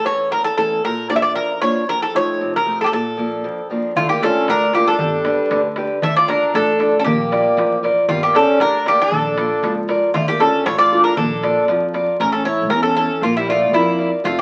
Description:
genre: greek folk, Greek bouzouki band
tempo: 116 BPM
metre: 2/4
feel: straight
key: unclear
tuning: A4 = 440 Hz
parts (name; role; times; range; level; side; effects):
- Greek bouzouki; melody; 0.0-14.4 s; E4 to E5; -20 LUFS; equal; none
- picked acoustic archtop guitar; accompaniment; 0.0-14.4 s; E2 to D5; -22 LUFS; equal; none
- accordion; second line; 4.0-14.4 s; G3 to A4; -25 LUFS; equal; none
- upright bass; bass; 4.0-14.4 s; F1 to F2; -32 LUFS; equal; none
- darbuka; percussion; 4.0-12.1 s; none; -29 LUFS; equal; none
room: wet studio reverb, RT60 0.8 s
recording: very old 78 rpm record, vinyl crackle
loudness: -17 LUFS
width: mono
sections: 0.0-4.0 A section; 4.0-12.2 B section; 12.2-14.4 A section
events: none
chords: 0.0 A; 0.8 Bb; 1.9 F7; 2.9 Bb; 4.0 Dm; 5.0 G; 6.0 Dm; 7.1 Bb; 8.1 Gm; 9.1 Bb; 10.1 Dm; 11.2 Bb; 12.2 A; 13.2 Bb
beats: 0.32 | 0.84 1.36 | 1.88 2.40 | 2.92 3.44 | 3.96 4.48 | 5.00 5.51 | 6.03 6.54 | 7.06 7.58 | 8.09 8.61 | 9.12 9.63 | 10.15 10.66 | 11.18 11.69 | 12.20 12.71 | 13.23 13.74 | 14.25

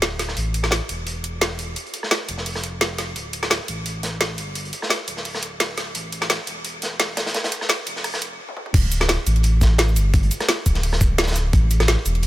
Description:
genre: liquid drum and bass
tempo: 172 BPM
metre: 4/4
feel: swing 54% on 16ths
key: D minor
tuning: A4 = 440 Hz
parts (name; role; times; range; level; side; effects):
- sub bass with octave; bass; 0.0-12.3 s; D1 to A1; -22 LUFS; equal; none
- crunchy breakbeat drum kit; drums; 0.0-12.3 s; hi-hat, snare drum; -28 LUFS; equal; high-pass filter on hats, high-pass filter on snare, high-pass filter on room
- drum and bass drum kit; drums; 0.0-12.3 s; crash cymbal, hi-hat, rim click, shaker, snare drum, toms; -24 LUFS; equal; high-pass filter on hats, high-pass filter on snare, high-pass filter on toms, high-pass filter on cymbals, high-pass filter on perc, high-pass filter on room
- electronic kick drum; drums; 8.7-11.6 s; none; -18 LUFS; equal; none
room: little or no reverb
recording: high-pass filter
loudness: -19 LUFS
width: side -16 dB against mid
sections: 0.0-8.7 A section; 8.7-12.3 B section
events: build-up 0.0-8.7; stop 8.4-8.7; drum fill 8.5; drop 8.7-12.3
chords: none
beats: 0.02 | 0.37 0.72 1.07 1.42 | 1.76 2.11 2.46 2.81 | 3.16 3.51 3.86 4.21 | 4.56 4.90 5.25 5.60 | 5.95 6.30 6.65 7.00 | 7.35 7.70 8.04 8.39 | 8.74 9.09 9.44 9.79 | 10.14 10.49 10.84 11.18 | 11.53 11.88 12.23

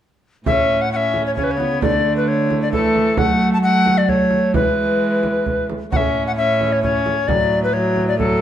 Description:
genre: classical, renaissance-style consort dance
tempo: 132 BPM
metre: 3/4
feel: straight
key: A major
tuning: A4 = 442 Hz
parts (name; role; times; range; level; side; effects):
- tenor recorder; melody; 0.5-8.4 s; A4 to A5; -18 LUFS; left 3 dB; none
- warm viola; accompaniment; 0.5-8.4 s; F#3 to C#4; -21 LUFS; right 2 dB; none
- warm cello; bass; 0.5-8.4 s; A2 to F#3; -22 LUFS; right 1 dB; none
- frame drum; percussion; 0.5-8.4 s; none; -24 LUFS; right 3 dB; none
room: wet stone room reverb, RT60 1.3 s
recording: dark, warm production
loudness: -15 LUFS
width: side -10 dB against mid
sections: 0.5-8.4 A section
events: none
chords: 0.5 A; 1.8 D5; 3.2 F#m; 4.5 E; 5.9 A; 7.3 F#m/A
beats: | 0.46 0.92 1.37 | 1.82 2.27 2.73 | 3.18 3.63 4.08 | 4.54 5.00 5.46 | 5.92 6.38 6.83 | 7.28 7.74 8.19

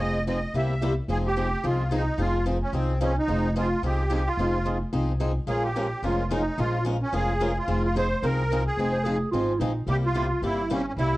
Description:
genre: acoustic string swing (jazz manouche)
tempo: 218 BPM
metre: 4/4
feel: swing 57% on 8ths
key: F minor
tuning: A4 = 440 Hz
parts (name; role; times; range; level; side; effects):
- musette accordion; melody; 0.0-11.2 s; C4 to E5; -28 LUFS; right 1 dB; none
- picked swing-style acoustic guitar; accompaniment; 0.0-11.2 s; C3 to Bb4; -32 LUFS; left 3 dB; none
- picked swing-style acoustic guitar; accompaniment; 0.0-11.2 s; C3 to Bb4; -33 LUFS; right 3 dB; none
- upright bass; bass; 0.0-11.2 s; F1 to C2; -27 LUFS; equal; none
- mellow clarinet; second line; 8.9-9.8 s; Eb4 to C5; -28 LUFS; right 3 dB; slapback echo
room: light reverb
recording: worn, warbling old tape, cassette tape, warbly pitch drift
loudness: -23 LUFS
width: side -18 dB against mid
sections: 0.0-1.1 A section; 1.1-11.2 A section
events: none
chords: 0.0 Fm7; 0.5 C7; 1.1 Fm7; 5.5 Bbm7; 7.7 Fm7; 9.9 C7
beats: 0.26 0.54 0.81 | 1.09 1.36 1.64 1.91 | 2.19 2.46 2.74 3.01 | 3.29 3.56 3.83 4.11 | 4.38 4.66 4.93 5.21 | 5.48 5.76 6.03 6.31 | 6.58 6.86 7.13 7.41 | 7.68 7.96 8.23 8.50 | 8.78 9.05 9.33 9.60 | 9.88 10.15 10.43 10.70 | 10.98

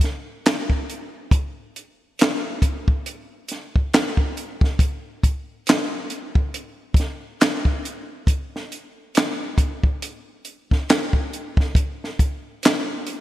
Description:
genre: R&B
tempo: 69 BPM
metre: 4/4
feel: swing 60% on 16ths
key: none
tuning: none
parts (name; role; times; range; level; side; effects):
- compact cocktail drum kit; drums; 0.0-13.2 s; handclaps, hi-hat, kick drum, snare drum; -19 LUFS; equal; none
room: moderate lush hall reverb, RT60 2.2 s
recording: bright 1980s-style digital production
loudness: -20 LUFS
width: side -15 dB against mid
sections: 0.0-13.2 A section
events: none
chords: none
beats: 0.44 | 1.31 2.18 3.05 3.92 | 4.79 5.66 6.53 7.40 | 8.27 9.14 10.01 10.88 | 11.75 12.62

